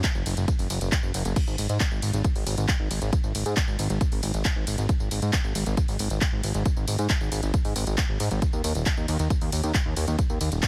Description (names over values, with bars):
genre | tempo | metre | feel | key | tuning
uplifting trance | 136 BPM | 4/4 | straight | unclear | A4 = 440 Hz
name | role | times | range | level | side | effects
electronic kick drum | drums | 0.0-10.7 s | none | -28 LUFS | equal | small room ambience
house drum kit | drums | 0.0-10.7 s | crash cymbal, handclaps, hi-hat, ride cymbal, tambourine | -33 LUFS | equal | small room ambience
fat analog bass | bass | 0.1-10.6 s | D#1 to G#2 | -28 LUFS | equal | sidechain pumping
room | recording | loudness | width
little or no reverb | heavily compressed radio sound | -26 LUFS | mono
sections
0.0-10.7 A section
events
none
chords
none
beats
0.04 0.48 0.92 | 1.36 1.80 2.24 2.69 | 3.13 3.57 4.01 4.45 | 4.89 5.33 5.77 6.21 | 6.66 7.10 7.54 7.98 | 8.42 8.86 9.30 9.74 | 10.19 10.63